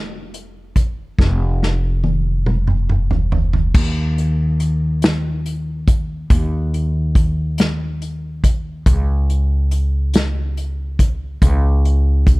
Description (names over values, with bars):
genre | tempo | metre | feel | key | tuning
six-eight pop ballad | 47 BPM (dotted quarters) | 6/8 | straight | unclear | A4 = 439 Hz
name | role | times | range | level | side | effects
upright bass | bass | 0.0-12.4 s | F1 to Eb2 | -17 LUFS | equal | none
unplugged drum kit | drums | 0.3-12.4 s | crash cymbal, hi-hat, kick drum, snare drum, toms | -16 LUFS | equal | none
room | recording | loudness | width
little or no reverb | dark, warm production | -15 LUFS | side -22 dB against mid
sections
0.0-3.7 A section; 3.7-12.4 A section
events
drum fill 1.2-3.7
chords
none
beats
| 1.18 2.46 | 3.74 5.02 | 6.30 7.58 | 8.86 10.14 | 11.42